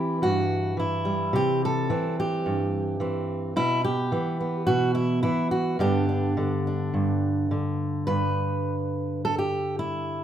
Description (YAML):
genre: folk, solo fingerstyle acoustic guitar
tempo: 107 BPM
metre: 4/4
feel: straight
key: G major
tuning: A4 = 441 Hz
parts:
  - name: fingerpicked steel-string acoustic guitar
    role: solo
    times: 0.0-10.2 s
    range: G2 to B4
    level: -23 LUFS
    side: equal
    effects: none
room: moderate large studio reverb, RT60 0.9 s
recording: band playing live in one room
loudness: -23 LUFS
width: side -10 dB against mid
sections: 0.0-8.1 A section; 8.1-10.2 B section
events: none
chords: 0.0 C; 3.6 Em/B; 5.8 G